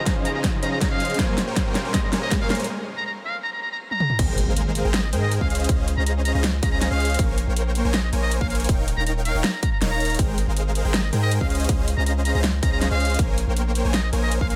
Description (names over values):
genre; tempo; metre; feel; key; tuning
future bass; 160 BPM; 4/4; half-time; Ab major; A4 = 438 Hz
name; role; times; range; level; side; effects
trumpet with metal mute; melody; 0.0-14.6 s; Eb5 to Bb5; -32 LUFS; equal; sidechain pumping, tape echo
electric guitar at the edge of break-up; accompaniment; 0.0-2.7 s; Bb2 to C5; -36 LUFS; equal; subtle chorus, sidechain pumping, tape echo
supersaw chords; riff; 0.0-14.6 s; Ab3 to Bb5; -30 LUFS; equal; sidechain pumping
riser and impact; sound effects; 0.0-5.7 s; none; -35 LUFS; equal; none
dubstep drum kit; drums; 0.1-14.6 s; crash cymbal, hi-hat, snare drum, toms; -29 LUFS; equal; none
electronic kick drum; drums; 0.1-14.5 s; none; -26 LUFS; equal; none
long sustained 808-style bass; bass; 4.2-14.6 s; Eb1 to Ab2; -25 LUFS; equal; sidechain pumping
room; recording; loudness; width
digital ambience; none; -22 LUFS; mono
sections
0.0-4.2 A section; 4.2-14.6 B section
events
build-up 0.0-4.2; drum fill 0.0-2.7, 3.9; riser 0.0-2.7; break 2.7-4.2; drop 4.2-14.6; impact 4.2-5.7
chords
0.0 Dbmaj9; 1.2 Bbm9; 2.7 N.C.; 4.2 Abmaj9; 5.5 Dbmaj9; 7.2 Bbm9; 8.7 Eb9; 10.2 Abmaj9; 11.5 Dbmaj9; 13.2 Bbm9